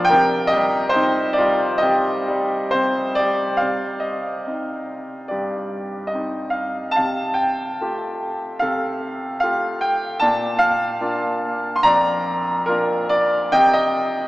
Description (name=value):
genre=classical, lyrical solo piano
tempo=64-77 BPM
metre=4/4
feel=rubato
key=C dorian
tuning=A4 = 443 Hz
part: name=clear concert grand piano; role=solo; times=0.0-14.3 s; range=F2 to C6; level=-18 LUFS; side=equal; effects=none
room=wet cathedral reverb, RT60 5.5 s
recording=recorded in a church or concert hall, small speaker sound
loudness=-18 LUFS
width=side -18 dB against mid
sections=0.0-3.6 A section; 3.6-14.3 B section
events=none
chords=0.1 Cm7; 3.6 Cmadd9; 7.0 Fadd9/C; 10.2 Bb; 13.5 Cm